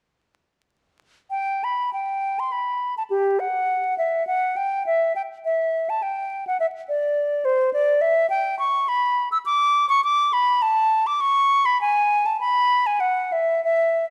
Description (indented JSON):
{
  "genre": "classical, baroque-style fantasia for unaccompanied flute",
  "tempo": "92-106 BPM",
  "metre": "3/4",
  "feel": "rubato",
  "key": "G major, D major from 8.3 s",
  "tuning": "A4 = 438 Hz",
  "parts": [
    { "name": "concert flute", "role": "solo", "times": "1.3-14.1 s", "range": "G4 to E6", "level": "-22 LUFS", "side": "equal", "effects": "none" }
  ],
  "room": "moderate recital hall reverb, RT60 1.4 s",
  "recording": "dark, warm production, vinyl crackle",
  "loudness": "-22 LUFS",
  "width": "mono",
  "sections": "1.3-14.1 A section",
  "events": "none",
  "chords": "none",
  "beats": "| 1.30 1.92 2.51 | 3.08 3.67 4.25 | 4.85 5.44 6.01 | 6.58 7.15 7.73 | 8.30 8.87 9.45 | 10.03 10.62 11.22 | 11.81 12.40 13.01 | 13.64"
}